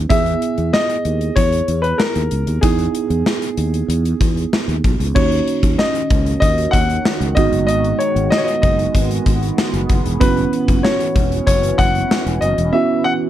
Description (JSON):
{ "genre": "1980s-style pop", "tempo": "95 BPM", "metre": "4/4", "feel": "straight", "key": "unclear", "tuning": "A4 = 440 Hz", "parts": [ { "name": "tine electric piano", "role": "accompaniment", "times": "0.0-13.3 s", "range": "G#3 to G#4", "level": "-22 LUFS", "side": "right 9 dB", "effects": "phaser" }, { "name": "fretless electric bass", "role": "bass", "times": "0.0-12.7 s", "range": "E1 to E2", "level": "-20 LUFS", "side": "equal", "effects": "none" }, { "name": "clear baby grand piano", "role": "melody", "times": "0.1-13.1 s", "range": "G#4 to F#5", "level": "-20 LUFS", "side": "left 3 dB", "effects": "slapback echo" }, { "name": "gated 80s drum kit", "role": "drums", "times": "0.1-12.7 s", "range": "crash cymbal, hi-hat, kick drum, snare drum", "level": "-18 LUFS", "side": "equal", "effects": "none" }, { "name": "sweeping resonant pad", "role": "sustained chords", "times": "5.2-13.3 s", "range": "D#3 to F#4", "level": "-25 LUFS", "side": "left 1 dB", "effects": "chorus" } ], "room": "light reverb", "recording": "none", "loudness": "-14 LUFS", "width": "side -12 dB against mid", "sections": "0.0-5.2 A section; 5.2-13.3 B section", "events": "none", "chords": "0.1 Emaj7; 5.2 D#m7; 7.4 G#m7; 10.2 F#7sus4" }